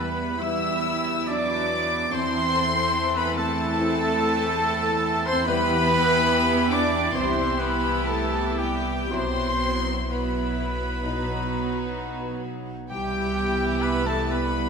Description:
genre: classical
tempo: 56-74 BPM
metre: 4/4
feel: rubato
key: E minor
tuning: A4 = 440 Hz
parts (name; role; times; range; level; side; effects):
- rich chamber violin section; melody; 0.0-14.7 s; G5 to E6; -29 LUFS; left 4 dB; none
- clear oboe; second line; 0.0-14.7 s; G4 to E5; -31 LUFS; right 1 dB; none
- hollow flute section; second line; 0.0-14.7 s; G4 to E5; -32 LUFS; left 2 dB; none
- warm studio violin section; second line; 0.0-14.7 s; D#4 to B4; -33 LUFS; left 4 dB; none
- warm studio viola section; accompaniment; 0.0-14.7 s; E3 to C4; -30 LUFS; right 4 dB; none
- concert harp; arpeggios; 0.0-14.7 s; B2 to E5; -35 LUFS; left 5 dB; none
- warm trumpet; stabs; 0.0-14.7 s; G4 to E5; -29 LUFS; right 2 dB; none
- warm studio cello section; bass; 0.0-14.7 s; G3 to E4; -31 LUFS; right 3 dB; none
- warm studio double bass section; bass; 0.0-14.7 s; B1 to E2; -32 LUFS; right 2 dB; none
- dark French horn section; sustained chords; 0.4-14.7 s; F#3 to E4; -34 LUFS; left 1 dB; none
room: wet scoring stage reverb, RT60 1.6 s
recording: minimal, uncompressed stereo recording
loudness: -21 LUFS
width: side -6 dB against mid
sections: 0.0-14.7 A section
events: none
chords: 0.0 Em; 2.1 Am/E; 5.5 Em; 7.2 Cmaj7; 9.1 Bsus4; 11.0 B; 12.9 Cmaj7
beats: 0.41 1.29 | 2.13 2.96 3.80 4.65 | 5.48 6.31 7.17 8.09 | 9.12 10.10 11.04 11.99 | 12.91 13.83

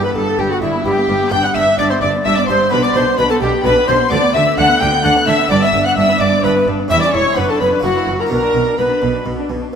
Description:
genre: classical, baroque-style concerto movement with solo episodes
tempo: 129 BPM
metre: 3/4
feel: straight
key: B minor from 4.1 s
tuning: A4 = 440 Hz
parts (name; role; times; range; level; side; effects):
- mellow tenor recorder; melody; 0.0-9.8 s; E4 to G5; -17 LUFS; left 1 dB; none
- warm chamber violin section; second line; 0.0-9.8 s; E4 to G5; -19 LUFS; equal; none
- dark chamber viola section; accompaniment; 0.0-9.8 s; G3 to F#4; -22 LUFS; left 1 dB; none
- harpsichord; accompaniment; 0.0-9.8 s; E2 to G4; -23 LUFS; right 1 dB; none
- rich chamber violin section; melody; 0.1-9.3 s; E5 to G6; -21 LUFS; left 3 dB; none
- rich chamber cello section; bass; 0.2-9.8 s; E2 to D3; -22 LUFS; right 4 dB; none
- rich chamber double bass section; bass; 0.2-9.8 s; E1 to D2; -24 LUFS; right 4 dB; none
room: wet scoring stage reverb, RT60 1.9 s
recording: none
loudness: -12 LUFS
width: side -7 dB against mid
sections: 0.0-9.7 A section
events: none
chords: 0.0 Em/G; 1.3 G; 2.7 Am11/B (rootless); 4.1 Bm/D; 5.5 G; 6.9 C#dim/E; 7.4 Bm/F#; 7.8 F#7; 8.3 Bm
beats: 0.39 0.86 | 1.32 1.79 2.25 | 2.72 3.18 3.65 | 4.11 4.58 5.04 | 5.51 5.97 6.44 | 6.91 7.37 7.84 | 8.31 8.79 9.26 | 9.73

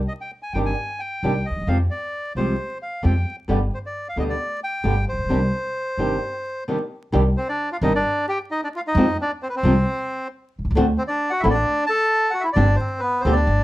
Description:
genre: tango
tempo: 132 BPM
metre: 4/4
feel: rubato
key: C harmonic minor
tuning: A4 = 440 Hz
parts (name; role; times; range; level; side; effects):
- upright bass; bass; 0.0-13.6 s; G1 to F2; -21 LUFS; equal; none
- bandoneon; melody; 0.1-13.6 s; B3 to A5; -23 LUFS; equal; none
- flamenco guitar; accompaniment; 0.5-13.3 s; B2 to G4; -22 LUFS; equal; none
room: light reverb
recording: dark, warm production, vinyl crackle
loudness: -20 LUFS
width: side -16 dB against mid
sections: 0.0-7.1 A section; 7.1-13.6 A section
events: break 6.2-7.1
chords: 0.0 Cmadd9; 1.7 Fmadd9; 3.5 G; 5.3 Cmadd9; 8.9 F5; 10.8 D7; 12.6 Gsus4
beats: 0.31 0.77 1.22 | 1.68 2.13 2.58 3.04 | 3.49 3.94 4.39 4.84 | 5.30 5.75 6.21 6.67 | 7.13 7.59 8.04 8.50 | 8.95 9.40 9.85 10.30 | 10.75 11.20 11.66 12.11 | 12.56 13.02 13.47

